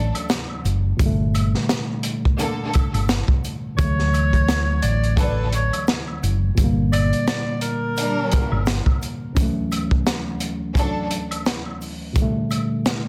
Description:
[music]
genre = hip hop, boom-bap hip-hop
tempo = 86 BPM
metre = 4/4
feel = swing 57% on 16ths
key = D major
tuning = A4 = 442 Hz
[part]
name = tine electric piano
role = accompaniment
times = 0.0-13.1 s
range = D2 to C#4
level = -28 LUFS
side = equal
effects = overdrive, plate reverb
[part]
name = hollow-body short-scale fingered electric bass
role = bass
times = 0.0-8.8 s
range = F#1 to D2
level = -23 LUFS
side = equal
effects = none
[part]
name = woodblock and tube shaker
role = percussion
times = 0.1-13.0 s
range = none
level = -38 LUFS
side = equal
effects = none
[part]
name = crunchy breakbeat drum kit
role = drums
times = 0.2-13.0 s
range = hi-hat, kick drum, snare drum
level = -25 LUFS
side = equal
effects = none
[part]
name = warm studio string section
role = stabs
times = 2.4-11.1 s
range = D3 to Bb4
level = -30 LUFS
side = equal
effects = plate reverb, digital delay
[part]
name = breathy tenor saxophone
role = melody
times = 3.8-8.6 s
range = Bb4 to D5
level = -28 LUFS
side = equal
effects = plate reverb, digital delay
[sound]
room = light reverb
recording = dense, heavily limited modern master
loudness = -21 LUFS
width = mono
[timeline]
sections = 0.0-13.1 A section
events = none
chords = 0.0 Dmaj7; 1.0 Gmadd9; 3.8 Dmaj7; 6.6 Gm; 9.4 Dmaj7; 12.2 Gmadd9

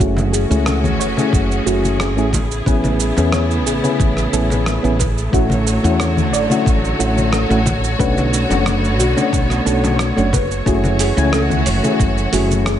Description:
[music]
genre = sunset chillout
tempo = 90 BPM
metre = 4/4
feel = straight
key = unclear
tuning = A4 = 440 Hz
[part]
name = soft electric-piano-like synth keys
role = accompaniment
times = 0.0-12.8 s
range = A3 to G#5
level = -19 LUFS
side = left 2 dB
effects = chorus, auto-pan, low-pass filter, tape echo
[part]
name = rich studio string section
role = sustained chords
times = 0.0-12.8 s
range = C#3 to C#5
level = -22 LUFS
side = equal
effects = none
[part]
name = soft round pluck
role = arpeggios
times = 0.0-12.8 s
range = F#4 to D5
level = -25 LUFS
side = right 1 dB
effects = lush chorus, tape echo
[part]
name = woody fretless electric bass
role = bass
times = 0.0-12.8 s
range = F#1 to E2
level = -19 LUFS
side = equal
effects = none
[part]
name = dusty soul sampler-style drum kit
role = drums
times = 0.0-12.8 s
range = cabasa, congas, hi-hat, rim click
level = -24 LUFS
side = equal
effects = overdrive
[part]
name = electronic kick drum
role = drums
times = 0.0-12.1 s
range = none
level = -19 LUFS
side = equal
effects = overdrive
[part]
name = congas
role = percussion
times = 0.2-12.6 s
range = none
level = -24 LUFS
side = left 1 dB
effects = none
[sound]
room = light reverb, digital ambience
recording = nothing above 10.7 kHz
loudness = -14 LUFS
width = side -10 dB against mid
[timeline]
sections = 0.0-12.8 A section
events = filter sweep on synth keys 0.0-12.8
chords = 0.0 F#m9; 2.3 Amaj9; 5.3 Dmaj7/A; 8.0 Bm9; 10.7 F#m9

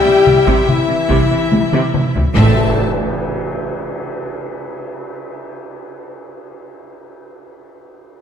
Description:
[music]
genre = cinematic, epic orchestral film score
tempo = 71 BPM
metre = 4/4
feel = straight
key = A minor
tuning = A4 = 440 Hz
[part]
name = rich symphonic violin section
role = melody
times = 0.0-2.8 s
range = E5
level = -27 LUFS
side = left 5 dB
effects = none
[part]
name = rich symphonic violin section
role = second line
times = 0.0-2.8 s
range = E5 to A5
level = -24 LUFS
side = left 4 dB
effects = none
[part]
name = warm symphonic viola section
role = accompaniment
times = 0.0-2.8 s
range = C3 to E4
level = -23 LUFS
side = right 1 dB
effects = none
[part]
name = mellow French horn section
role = sustained chords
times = 0.0-2.8 s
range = E4 to A4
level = -17 LUFS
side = left 5 dB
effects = none
[part]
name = warm trombone section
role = sustained chords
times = 0.0-2.8 s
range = E3 to A3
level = -23 LUFS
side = equal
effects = none
[part]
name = rich symphonic cello section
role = bass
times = 0.1-2.8 s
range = A2 to C3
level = -21 LUFS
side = right 2 dB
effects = none
[part]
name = dark symphonic double bass section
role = bass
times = 0.3-2.8 s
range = A1 to C2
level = -21 LUFS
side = right 3 dB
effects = none
[part]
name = taiko ensemble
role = drums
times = 0.3-4.0 s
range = none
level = -17 LUFS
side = left 1 dB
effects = none
[part]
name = tam-tam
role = percussion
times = 2.4-5.7 s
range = none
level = -25 LUFS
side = right 1 dB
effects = none
[part]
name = timpani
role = percussion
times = 2.4-2.8 s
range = A2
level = -23 LUFS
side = left 1 dB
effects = none
[part]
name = impact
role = sound effects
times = 2.4-5.8 s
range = none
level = -27 LUFS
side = equal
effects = none
[sound]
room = wet scoring stage reverb, RT60 1.8 s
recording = none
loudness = -13 LUFS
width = side -8 dB against mid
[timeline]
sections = 0.0-2.4 A section; 2.4-5.8 B section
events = drum fill 1.5-2.4; band accent 2.4-3.2; impact 2.4-5.8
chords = 0.0 C; 2.4 Am

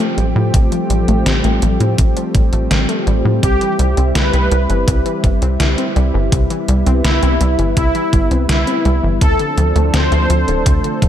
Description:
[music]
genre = synthwave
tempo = 83 BPM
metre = 4/4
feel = straight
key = unclear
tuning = A4 = 440 Hz
[part]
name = lush unison pad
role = sustained chords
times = 0.0-11.1 s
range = F3 to A4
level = -20 LUFS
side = equal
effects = chorus
[part]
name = wide unison pluck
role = arpeggios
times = 0.0-11.1 s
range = C3 to E4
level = -24 LUFS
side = left 4 dB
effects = ping-pong delay
[part]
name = detuned 8-bit digital drum machine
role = drums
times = 0.0-11.1 s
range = hi-hat, snare drum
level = -21 LUFS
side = equal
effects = overdrive, gated reverb
[part]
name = tight sequencer bass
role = bass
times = 0.2-11.1 s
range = D1 to A2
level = -15 LUFS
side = equal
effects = none
[part]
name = electronic kick drum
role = drums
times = 0.5-11.1 s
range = none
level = -15 LUFS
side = equal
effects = overdrive
[part]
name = soft supersaw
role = melody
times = 3.4-10.9 s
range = E4 to C5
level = -20 LUFS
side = equal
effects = tape echo
[sound]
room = light reverb, digital ambience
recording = none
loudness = -12 LUFS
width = side -10 dB against mid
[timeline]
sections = 0.0-11.1 A section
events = none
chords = 0.0 Fadd9/A; 3.4 C; 9.2 Dm7

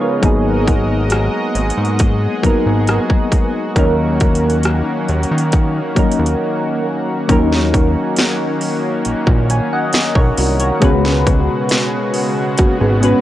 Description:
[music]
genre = contemporary R&B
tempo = 68 BPM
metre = 4/4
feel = straight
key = unclear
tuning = A4 = 442 Hz
[part]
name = soft electric-piano-like synth keys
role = accompaniment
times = 0.0-13.2 s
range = E#3 to G#5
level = -17 LUFS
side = left 1 dB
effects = chorus, phaser
[part]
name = lush unison pad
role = sustained chords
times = 0.0-13.2 s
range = B2 to D#5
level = -22 LUFS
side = equal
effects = chorus
[part]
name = nylon-string guitar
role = arpeggios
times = 0.0-0.2, 12.6-13.2 s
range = G#3 to G#4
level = -19 LUFS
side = right 1 dB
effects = none
[part]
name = fat analog bass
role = bass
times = 0.2-13.1 s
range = G#1 to D#3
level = -17 LUFS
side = equal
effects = none
[part]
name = trap drum kit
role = drums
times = 0.2-13.2 s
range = hi-hat, kick drum, rim click, snare drum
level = -16 LUFS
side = equal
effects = overdrive, vintage 12-bit sampler grit
[sound]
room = digital ambience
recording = dry, gritty hardware recording, cassette tape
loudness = -13 LUFS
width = side -13 dB against mid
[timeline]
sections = 0.0-7.3 A section; 7.3-13.2 B section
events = break 6.4-7.3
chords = 0.2 G#m9; 3.8 D#m7; 10.8 C#7sus4

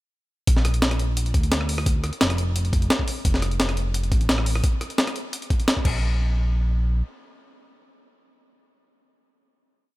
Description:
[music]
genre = liquid drum and bass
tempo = 173 BPM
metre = 4/4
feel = straight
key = Bb major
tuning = A4 = 442 Hz
[part]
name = smooth gliding synth bass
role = bass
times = 0.5-7.0 s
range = F1 to D2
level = -23 LUFS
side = equal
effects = tube saturation
[part]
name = breakbeat sampler-style drum kit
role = drums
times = 0.5-5.9 s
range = crash cymbal, hi-hat, rim click, snare drum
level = -24 LUFS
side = equal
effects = none
[part]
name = electronic kick drum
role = drums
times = 0.5-5.9 s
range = none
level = -22 LUFS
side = equal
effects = none
[sound]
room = little or no reverb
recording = none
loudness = -20 LUFS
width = side -19 dB against mid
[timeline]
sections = 0.5-6.0 drop; 6.0-8.8 final hit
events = drop 0.5-6.0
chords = none

